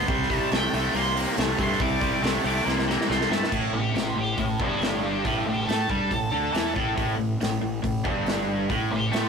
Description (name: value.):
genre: blues rock power trio and southern rock.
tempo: 139 BPM.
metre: 4/4.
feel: straight.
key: A minor.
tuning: A4 = 440 Hz.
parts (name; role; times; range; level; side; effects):
octave-fuzz lead guitar; melody; 0.0-9.3 s; D4 to D6; -29 LUFS; right 1 dB; wah, distortion.
overdriven electric guitar; riff; 0.0-9.3 s; G2 to Bb3; -26 LUFS; equal; none.
fuzz fingered electric bass; bass; 0.0-9.3 s; G1 to A2; -29 LUFS; equal; overdrive.
big rock drum kit; drums; 0.0-9.2 s; crash cymbal, hi-hat, kick drum, snare drum; -29 LUFS; equal; none.
room: moderate small room reverb, RT60 0.5 s.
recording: rough rehearsal-room recording, warm saturation.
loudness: -22 LUFS.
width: side -6 dB against mid.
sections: 0.0-3.5 A section; 3.5-9.3 B section.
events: lead electric guitar solo 0.0-3.5; drum fill 2.7-3.5.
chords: 0.1 C5; 3.5 A5.